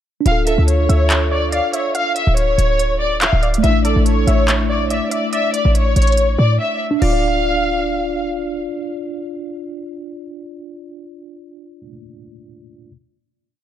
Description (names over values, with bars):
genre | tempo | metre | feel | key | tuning
hip hop, drill | 142 BPM | 4/4 | half-time | D harmonic minor | A4 = 440 Hz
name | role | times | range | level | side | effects
mellow tine electric piano | accompaniment | 0.2-12.9 s | A3 to D5 | -23 LUFS | equal | medium stereo tremolo, low-pass filter
warm studio violin section | melody | 0.3-8.2 s | C#5 to F5 | -20 LUFS | left 1 dB | low-pass filter, tape echo
short 808-style bass | bass | 0.3-8.7 s | D1 to A2 | -16 LUFS | equal | none
drill drum kit | drums | 0.3-7.1 s | crash cymbal, handclaps, hi-hat | -22 LUFS | right 1 dB | none
warbly dusty pluck | second line | 0.5-8.2 s | A4 to F5 | -26 LUFS | right 2 dB | chorus, tape echo
room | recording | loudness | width
light reverb, digital ambience | dark, warm production | -14 LUFS | side -11 dB against mid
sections
0.3-7.0 hook; 7.0-10.4 final chord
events
break 6.6-7.0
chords
0.3 Dmadd9; 3.6 Asus4; 7.0 Dm